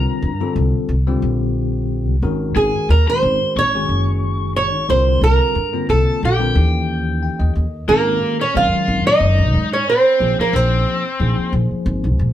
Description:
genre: jazz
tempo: 90 BPM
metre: 4/4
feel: swing 54% on 16ths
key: unclear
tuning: A4 = 441 Hz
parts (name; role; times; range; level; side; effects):
- nylon-string guitar; melody; 0.0-11.5 s; G4 to E#5; -17 LUFS; right 3 dB; none
- cranked stack guitar; second line; 0.0-11.5 s; A#3 to Db6; -24 LUFS; left 5 dB; overdrive
- bell-like tine electric piano; accompaniment; 0.0-12.3 s; D3 to G5; -23 LUFS; left 3 dB; medium stereo tremolo
- upright bass; bass; 0.0-12.3 s; Gb1 to A#2; -18 LUFS; equal; none
room: moderate studio reverb, RT60 0.6 s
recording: band playing live in one room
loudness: -15 LUFS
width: side -12 dB against mid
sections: 0.0-7.9 A section; 7.9-12.3 B section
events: tine electric piano fill 6.9-7.9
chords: 0.0 C9sus4; 2.2 Ab9sus4; 4.9 C9sus4; 6.6 Eb7b9; 7.9 G#9sus4; 10.2 A#9sus4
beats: 0.55 1.22 1.89 | 2.56 3.22 3.89 4.56 | 5.22 5.89 6.55 7.22 | 7.88 8.55 9.21 9.88 | 10.54 11.21 11.87

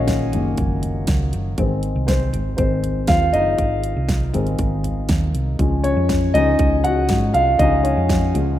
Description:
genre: piano-driven pop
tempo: 120 BPM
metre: 4/4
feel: straight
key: Db major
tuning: A4 = 440 Hz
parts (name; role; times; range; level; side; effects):
- dark upright piano; accompaniment; 0.0-8.6 s; Eb3 to Gb5; -19 LUFS; left 1 dB; none
- hollow-body short-scale fingered electric bass; bass; 0.0-8.6 s; Gb1 to Ab2; -21 LUFS; right 1 dB; none
- pop drum kit; drums; 0.1-8.5 s; hi-hat, kick drum, snare drum, toms; -23 LUFS; right 1 dB; none
room: moderate plate reverb, RT60 2.4 s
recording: rough home demo mix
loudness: -16 LUFS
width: side -12 dB against mid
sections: 0.0-8.6 A section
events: upright piano solo 0.0-8.6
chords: 0.0 Gb6; 1.6 Ab; 5.6 Db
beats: 0.08 0.58 1.08 | 1.58 2.08 2.59 3.09 | 3.59 4.09 4.59 5.09 | 5.59 6.09 6.59 7.09 | 7.59 8.09

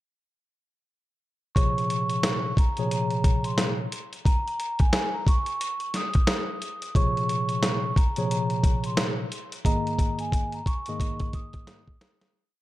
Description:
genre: hip hop, boom-bap hip-hop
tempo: 89 BPM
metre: 4/4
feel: swing 60% on 16ths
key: Bb minor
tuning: A4 = 440 Hz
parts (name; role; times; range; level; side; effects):
- vibraphone with soft mallets; melody; 1.5-12.3 s; Ab5 to Eb6; -30 LUFS; right 1 dB; high-pass filter, low-pass filter, analog delay
- mellow tine electric piano; accompaniment; 1.6-11.9 s; Ab2 to Eb5; -28 LUFS; equal; medium stereo tremolo, high-pass filter, low-pass filter
- dusty soul sampler-style drum kit; drums; 1.6-12.3 s; hi-hat, kick drum, snare drum; -25 LUFS; equal; none
room: digital ambience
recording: dark, warm production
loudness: -23 LUFS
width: side -16 dB against mid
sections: 1.6-12.3 hook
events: fade-out 9.6-12.3; drum fill 9.6-12.3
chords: 1.6 Bbm7; 4.3 N.C.; 7.0 Bbm7; 9.6 Absus2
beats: | 1.56 2.23 2.91 3.58 | 4.26 4.93 5.60 6.28 | 6.95 7.63 8.30 8.97 | 9.65 10.32 11.00 11.67

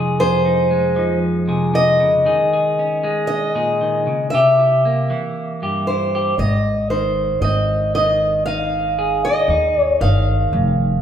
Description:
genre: acoustic folk-pop ballad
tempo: 58 BPM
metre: 4/4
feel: straight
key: unclear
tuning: A4 = 440 Hz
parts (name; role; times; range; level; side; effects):
- clean electric guitar; accompaniment; 0.0-11.0 s; F2 to Ab4; -20 LUFS; equal; spring reverb
- picked old ladder-braced acoustic guitar; melody; 0.2-11.0 s; C5 to F5; -17 LUFS; equal; none
- upright bass; bass; 6.4-11.0 s; F1 to Eb2; -20 LUFS; equal; none
room: wet large studio reverb, RT60 1.4 s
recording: band playing live in one room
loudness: -15 LUFS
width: side -9 dB against mid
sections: 0.0-6.4 A section; 6.4-11.0 B section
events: none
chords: 0.0 Fm7; 2.3 Eb7sus4; 4.3 C7; 6.4 Ab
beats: 0.19 1.22 | 2.25 3.29 4.32 5.36 | 6.40 7.43 8.46 9.50 | 10.53

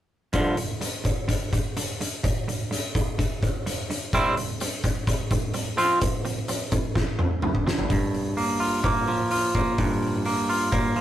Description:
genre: quiet-loud alternative rock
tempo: 127 BPM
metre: 4/4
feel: straight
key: G minor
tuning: A4 = 440 Hz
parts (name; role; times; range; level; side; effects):
- twangy electric guitar; arpeggios; 0.3-11.0 s; G2 to F4; -26 LUFS; right 1 dB; none
- oversized low-tuned drum kit; drums; 0.3-11.0 s; hi-hat, kick drum, snare drum, toms; -25 LUFS; equal; none
room: moderate studio reverb, RT60 0.5 s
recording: rough rehearsal-room recording, tube saturation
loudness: -23 LUFS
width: side -12 dB against mid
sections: 0.3-7.9 A section; 7.9-11.0 B section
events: drum fill 7.0-7.9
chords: 0.3 G5; 4.1 C/G; 5.8 F5; 7.9 Gm7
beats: | 0.33 0.81 1.28 1.75 | 2.23 2.70 3.17 3.65 | 4.12 4.59 5.07 5.54 | 6.01 6.48 6.95 7.42 | 7.89 8.37 8.84 9.31 | 9.78 10.25 10.72

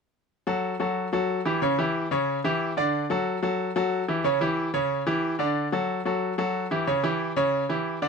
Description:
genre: latin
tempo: 183 BPM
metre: 4/4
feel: straight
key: unclear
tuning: A4 = 441 Hz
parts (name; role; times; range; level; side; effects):
- bright grand piano; solo; 0.5-8.1 s; C#3 to D5; -24 LUFS; equal; none
room: light reverb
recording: close, detailed microphones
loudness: -24 LUFS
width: side -5 dB against mid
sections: 0.3-8.1 A section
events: none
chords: 0.3 Esus24; 1.6 C#dim; 2.9 D; 4.2 C#dim; 5.6 D; 6.9 C#dim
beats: | 0.30 0.63 0.96 1.29 | 1.62 1.95 2.28 2.60 | 2.93 3.26 3.59 3.92 | 4.25 4.58 4.90 5.23 | 5.56 5.89 6.22 6.54 | 6.87 7.20 7.53 7.86

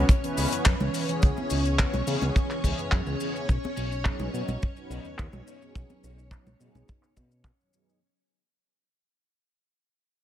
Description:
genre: nu-disco, nu disco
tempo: 106 BPM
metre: 4/4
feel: straight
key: unclear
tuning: A4 = 440 Hz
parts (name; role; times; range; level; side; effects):
- mellow synth brass; accompaniment; 0.0-8.0 s; E3 to C#5; -33 LUFS; equal; chorus, sidechain pumping, ping-pong delay
- string machine, full ensemble; sustained chords; 0.0-8.0 s; C#4 to C#5; -33 LUFS; left 1 dB; ensemble chorus, sidechain pumping
- fat analog bass; bass; 0.0-7.5 s; B1 to C#3; -30 LUFS; equal; none
- damped 70s drum kit; drums; 0.1-8.0 s; handclaps, hi-hat; -32 LUFS; left 1 dB; low-pass filter on hats, studio reverb, low-pass filter on cymbals, low-pass filter on perc, low-pass filter on snare, low-pass filter on room
- kick drum; drums; 0.1-7.6 s; none; -23 LUFS; equal; studio reverb
- maracas and congas; percussion; 0.1-8.0 s; none; -37 LUFS; equal; none
room: small room ambience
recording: none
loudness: -24 LUFS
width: side -12 dB against mid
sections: 0.0-8.0 A section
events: fade-out 0.0-8.0; filter sweep on drum 0.0-8.0; filter sweep on analog polysynth 0.0-8.0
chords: 0.0 C#m7; 3.5 G#m7/B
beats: 0.09 0.66 | 1.22 1.79 2.35 2.92 | 3.49 4.05 4.62 5.19 | 5.75 6.32 6.88 7.45

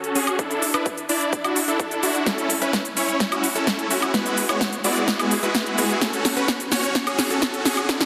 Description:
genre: EDM, festival progressive house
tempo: 128 BPM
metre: 4/4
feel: straight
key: unclear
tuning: A4 = 441 Hz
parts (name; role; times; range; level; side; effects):
- supersaw chords; riff; 0.0-8.1 s; G#3 to D5; -24 LUFS; equal; sidechain pumping, low-pass filter, delay
- big-room dance drum kit; drums; 0.0-8.1 s; cabasa, hi-hat, snare drum, woodblock; -26 LUFS; equal; overdrive
- electronic kick drum; drums; 0.4-8.0 s; none; -31 LUFS; equal; overdrive, high-pass filter on kick
room: wet lush hall reverb, RT60 1.8 s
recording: dense, heavily limited modern master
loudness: -22 LUFS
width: mono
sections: 0.0-8.1 A section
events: build-up 0.0-8.1; drum fill 2.3-8.1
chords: 0.4 Dsus2; 2.3 A; 4.1 Eadd9; 6.0 F#m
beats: | 0.39 0.86 1.33 1.80 | 2.27 2.73 3.20 3.67 | 4.14 4.61 5.08 5.55 | 6.01 6.48 6.95 7.42 | 7.89

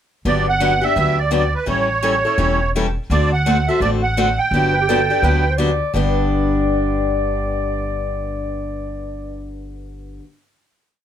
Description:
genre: acoustic string swing (jazz manouche)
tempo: 169 BPM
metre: 4/4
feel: swing 61% on 8ths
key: G major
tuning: A4 = 440 Hz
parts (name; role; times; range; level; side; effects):
- upright bass; bass; 0.2-10.2 s; E1 to D2; -22 LUFS; equal; none
- musette accordion; melody; 0.3-5.5 s; B4 to G5; -18 LUFS; right 4 dB; none
- picked steel-string acoustic guitar; accompaniment; 0.3-10.2 s; G2 to A4; -21 LUFS; left 3 dB; none
- growling clarinet; second line; 4.7-9.6 s; G4 to D5; -24 LUFS; equal; none
room: moderate studio reverb, RT60 0.5 s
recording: none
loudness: -16 LUFS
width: side -9 dB against mid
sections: 0.2-5.9 A section; 5.9-8.8 final chord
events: none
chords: 0.2 Gmaj7; 1.7 A7; 3.1 D7; 4.5 Gmaj7; 5.9 G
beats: | 0.25 0.60 0.96 1.31 | 1.67 2.02 2.38 2.73 | 3.09 3.44 3.80 4.15 | 4.51 4.87 5.22 5.58 | 5.93 6.29 6.65 7.00 | 7.36 7.72 8.07 8.43

